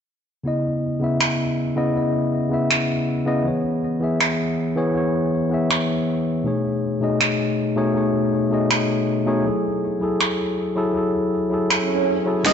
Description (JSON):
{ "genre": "future bass", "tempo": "160 BPM", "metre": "4/4", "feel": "swing 55% on 16ths, half-time", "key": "unclear", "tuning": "A4 = 436 Hz", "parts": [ { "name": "tine electric piano", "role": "accompaniment", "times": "0.4-12.5 s", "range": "B2 to E5", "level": "-20 LUFS", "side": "left 1 dB", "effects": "ping-pong delay" }, { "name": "big-room dance drum kit", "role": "drums", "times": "1.2-12.5 s", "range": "finger snaps, hi-hat, snare drum", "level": "-22 LUFS", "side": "right 2 dB", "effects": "high-pass filter on snare, high-pass filter on hats, high-pass filter on room" }, { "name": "swell and riser", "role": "sound effects", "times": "11.8-12.5 s", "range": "none", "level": "-23 LUFS", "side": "right 8 dB", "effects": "none" }, { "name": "warm velvety synth lead", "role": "melody", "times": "12.5 s", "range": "D#5", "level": "-19 LUFS", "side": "left 1 dB", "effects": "chorus" }, { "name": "airy breathy pad", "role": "sustained chords", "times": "12.5 s", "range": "C#3 to E4", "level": "-31 LUFS", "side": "right 1 dB", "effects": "none" }, { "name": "supersaw chords", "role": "riff", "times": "12.5 s", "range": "C#4 to E5", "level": "-24 LUFS", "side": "right 1 dB", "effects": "lush chorus, low-pass filter" } ], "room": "moderate lush hall reverb, RT60 2.2 s", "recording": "dark, warm production, nothing above 7.9 kHz", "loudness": "-19 LUFS", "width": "side -7 dB against mid", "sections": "0.5-12.5 A section", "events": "swell 11.8-12.5", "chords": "0.5 C#m9; 3.5 E6; 6.5 B13; 9.5 F#m9" }